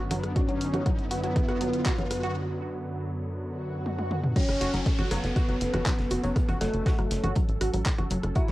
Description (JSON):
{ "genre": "melodic techno", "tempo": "120 BPM", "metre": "4/4", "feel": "straight", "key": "F# minor", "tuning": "A4 = 440 Hz", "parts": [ { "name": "warm analog pad", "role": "sustained chords", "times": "0.0-8.5 s", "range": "F#2 to A4", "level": "-34 LUFS", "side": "equal", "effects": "wide subtle chorus, sidechain pumping, cassette tape" }, { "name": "tight sequenced synth", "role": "arpeggios", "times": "0.0-8.5 s", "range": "F#3 to F#4", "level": "-34 LUFS", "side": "equal", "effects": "chorus, sidechain pumping, cassette tape, analog delay" }, { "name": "riser, swell and downlifter", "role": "sound effects", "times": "0.0-8.4 s", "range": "none", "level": "-39 LUFS", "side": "equal", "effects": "none" }, { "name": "deep house drum kit", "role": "drums", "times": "0.1-8.5 s", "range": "congas, crash cymbal, handclaps, hi-hat, rim click, toms", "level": "-33 LUFS", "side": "equal", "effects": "cassette tape" }, { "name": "mellow synth brass", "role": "melody", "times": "0.4-8.5 s", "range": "A3 to E4", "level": "-32 LUFS", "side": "equal", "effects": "chorus, cassette tape, analog delay" }, { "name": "electronic kick drum", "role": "drums", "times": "0.4-8.5 s", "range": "none", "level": "-27 LUFS", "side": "equal", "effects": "cassette tape" }, { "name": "dark detuned synth bell", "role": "second line", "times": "4.4-8.5 s", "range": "A4 to E5", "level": "-37 LUFS", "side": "left 1 dB", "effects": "chorus, sidechain pumping, cassette tape, analog delay" }, { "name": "modern studio drum kit", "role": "drums", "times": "4.4-8.5 s", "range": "hi-hat, snare drum", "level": "-44 LUFS", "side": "equal", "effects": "none" }, { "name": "tight sequencer bass", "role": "bass", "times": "4.5-8.5 s", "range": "F#1 to A1", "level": "-30 LUFS", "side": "equal", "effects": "sidechain pumping" } ], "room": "moderate small room reverb, RT60 0.5 s", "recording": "home recording on cassette", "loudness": "-25 LUFS", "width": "side -17 dB against mid", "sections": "0.0-4.4 A section; 4.4-8.5 B section", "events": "build-up 0.0-4.4; riser 0.0-2.4; filter sweep on analog polysynth 0.0-4.4; break 2.4-4.4; swell 3.5-4.4; drum fill 3.9-4.4; drop 4.4-8.5", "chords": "0.0 Bm/F#; 4.4 F#m" }